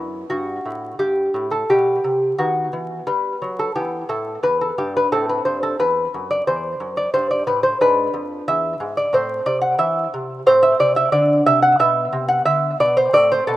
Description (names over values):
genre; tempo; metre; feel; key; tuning
classical, baroque-style dance for lute; 89 BPM; 4/4; rubato; E minor; A4 = 440 Hz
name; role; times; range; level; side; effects
lute; solo; 0.0-13.6 s; E2 to F#5; -16 LUFS; equal; analog delay
room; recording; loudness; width
small room ambience; rough home demo mix, vinyl crackle; -16 LUFS; side -14 dB against mid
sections
0.0-13.6 A section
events
none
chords
0.0 Em (rootless); 2.4 B/D#; 3.8 Em; 5.1 Am; 7.8 E7; 9.1 Am; 11.8 Bmadd11